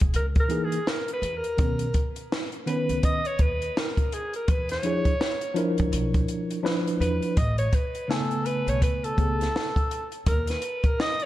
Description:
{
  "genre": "hip hop, jazz-hop",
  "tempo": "83 BPM",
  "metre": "4/4",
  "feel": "swing 60% on 16ths",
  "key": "unclear",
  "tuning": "A4 = 440 Hz",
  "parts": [
    { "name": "upright bass", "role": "bass", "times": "0.0-10.6 s", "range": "E1 to E2", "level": "-29 LUFS", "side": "equal", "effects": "none" },
    { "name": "compact cocktail drum kit", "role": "drums", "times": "0.0-11.3 s", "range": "hi-hat, kick drum, snare drum", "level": "-25 LUFS", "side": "equal", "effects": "none" },
    { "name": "breathy alto saxophone", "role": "melody", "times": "0.2-11.3 s", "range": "G#4 to D#5", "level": "-29 LUFS", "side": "equal", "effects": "tape echo" },
    { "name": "tine electric piano", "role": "accompaniment", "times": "0.5-9.5 s", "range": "C#3 to G#5", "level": "-28 LUFS", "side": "equal", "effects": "overdrive, fast stereo tremolo" }
  ],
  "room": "light reverb, studio ambience",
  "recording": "dark, warm production, lossy compression artefacts",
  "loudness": "-23 LUFS",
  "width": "side -14 dB against mid",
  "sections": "0.0-11.3 A section",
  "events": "alto saxophone solo 0.0-11.3",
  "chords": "0.0 F#13 (rootless); 1.6 Bmaj9; 4.5 E7(no3); 7.4 Amaj9; 10.3 D#5",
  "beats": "0.14 0.87 | 1.59 2.31 3.04 3.76 | 4.48 5.21 5.93 6.65 | 7.37 8.10 8.82 9.54 | 10.27 10.99"
}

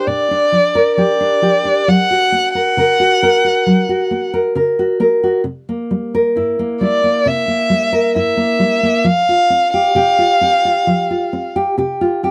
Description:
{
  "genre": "acoustic folk-pop ballad",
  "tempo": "67 BPM",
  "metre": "4/4",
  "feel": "straight",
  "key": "unclear",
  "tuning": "A4 = 442 Hz",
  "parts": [
    { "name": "dark violin", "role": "melody", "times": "0.0-11.5 s", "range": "D5 to Gb5", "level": "-16 LUFS", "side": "equal", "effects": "none" },
    { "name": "nylon-string guitar", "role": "accompaniment", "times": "0.0-12.3 s", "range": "G2 to Bb4", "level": "-18 LUFS", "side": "equal", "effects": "none" }
  ],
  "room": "light reverb",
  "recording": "dry, close 1970s-style studio recording",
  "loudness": "-15 LUFS",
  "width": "mono",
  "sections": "0.0-12.3 A section",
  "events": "none",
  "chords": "0.0 Bb6; 1.9 Gb; 5.5 C7; 9.1 Fsus2",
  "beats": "0.06 0.96 | 1.87 2.77 3.66 4.56 | 5.46 6.36 7.26 8.16 | 9.06 9.96 10.87 11.77"
}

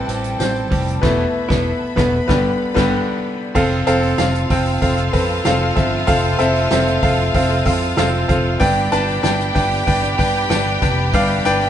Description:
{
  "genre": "piano-driven pop",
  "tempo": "95 BPM",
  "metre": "4/4",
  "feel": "straight",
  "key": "unclear",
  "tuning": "A4 = 440 Hz",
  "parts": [
    { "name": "bright concert grand piano", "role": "accompaniment", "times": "0.0-11.7 s", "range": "G2 to A5", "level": "-18 LUFS", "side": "left 1 dB", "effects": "none" },
    { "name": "rich studio string section", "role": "sustained chords", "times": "0.0-11.7 s", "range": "G4 to C6", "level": "-30 LUFS", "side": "left 3 dB", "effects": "none" },
    { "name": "direct-recorded clean electric guitar", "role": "riff", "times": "0.0-11.7 s", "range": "E2 to A4", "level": "-26 LUFS", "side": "right 4 dB", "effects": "none" },
    { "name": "fretless electric bass", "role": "bass", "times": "0.0-11.7 s", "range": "E1 to G2", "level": "-22 LUFS", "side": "equal", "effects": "none" },
    { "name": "natural country drum kit", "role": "drums", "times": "0.1-11.7 s", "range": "crash cymbal, hi-hat, kick drum, snare drum", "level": "-22 LUFS", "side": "equal", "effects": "none" },
    { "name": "tambourine", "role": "percussion", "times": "0.1-11.6 s", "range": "none", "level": "-39 LUFS", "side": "left 4 dB", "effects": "none" },
    { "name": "rich studio violin section", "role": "second line", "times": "3.6-11.7 s", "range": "F4 to G5", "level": "-25 LUFS", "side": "equal", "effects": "none" }
  ],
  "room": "wet stone room reverb, RT60 1.3 s",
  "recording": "band playing live in one room, nothing above 10.4 kHz",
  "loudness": "-15 LUFS",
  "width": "side -10 dB against mid",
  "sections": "0.0-3.6 A section; 3.6-11.7 B section",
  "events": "grand piano solo 0.0-3.6; band accent 1.0-3.6",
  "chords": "0.0 Am7; 1.0 Esus4; 2.3 G; 3.6 F; 8.6 G",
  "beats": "0.40 | 1.03 1.66 2.29 2.93 | 3.56 4.19 4.82 5.45 | 6.08 6.72 7.35 7.98 | 8.61 9.24 9.87 10.51 | 11.14"
}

